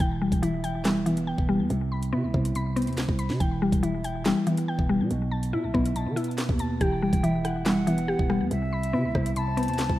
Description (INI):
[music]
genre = hip hop, drill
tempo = 141 BPM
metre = 4/4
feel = half-time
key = E minor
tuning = A4 = 440 Hz
[part]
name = mellow electric guitar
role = accompaniment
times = 0.0-10.0 s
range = B2 to E4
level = -30 LUFS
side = right 2 dB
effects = low-pass filter
[part]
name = mallet-like synth pluck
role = arpeggios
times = 0.0-10.0 s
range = C3 to B5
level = -27 LUFS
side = left 2 dB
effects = chorus, low-pass filter, ping-pong delay
[part]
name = growling 808-style bass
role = bass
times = 0.0-10.0 s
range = E1 to D#3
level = -31 LUFS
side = equal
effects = none
[part]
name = drill drum kit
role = drums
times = 0.0-10.0 s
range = handclaps, hi-hat, kick drum, rim click, snare drum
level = -29 LUFS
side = equal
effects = none
[part]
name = concert flute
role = second line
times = 6.8-10.0 s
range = E5 to A5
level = -33 LUFS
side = left 1 dB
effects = ping-pong delay
[sound]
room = light reverb, digital ambience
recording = rough home demo mix, vinyl crackle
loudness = -23 LUFS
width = side -15 dB against mid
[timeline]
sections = 0.0-10.0 A section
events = none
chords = 0.0 Em; 1.7 Cmaj7; 3.4 Em; 5.1 B7sus4; 6.8 Emadd9; 8.5 Cmaj7